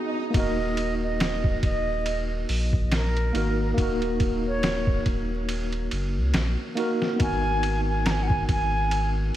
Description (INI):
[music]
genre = trip hop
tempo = 70 BPM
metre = 4/4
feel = swing 56% on 16ths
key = Eb minor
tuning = A4 = 440 Hz
[part]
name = tine electric piano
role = accompaniment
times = 0.0-9.4 s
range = Bb3 to Bb4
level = -29 LUFS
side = equal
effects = fast stereo tremolo, harmonic tremolo, tape echo
[part]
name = warm sub bass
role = bass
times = 0.3-9.3 s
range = Eb1 to Db2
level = -27 LUFS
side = equal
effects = none
[part]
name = trip hop sampler-style drum kit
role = drums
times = 0.3-9.1 s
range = hi-hat, kick drum, ride cymbal, snare drum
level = -28 LUFS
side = equal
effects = none
[part]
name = wooden flute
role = melody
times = 0.4-9.1 s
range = Bb4 to Bb5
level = -30 LUFS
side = right 1 dB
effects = vintage 12-bit sampler grit, tape echo
[sound]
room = moderate church reverb, RT60 2.6 s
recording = dreamy mix soaked in reverb, vinyl crackle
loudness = -22 LUFS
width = side -12 dB against mid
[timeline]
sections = 0.3-9.4 A section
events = break 0.0-0.3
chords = 0.3 Ebm; 7.2 Abm7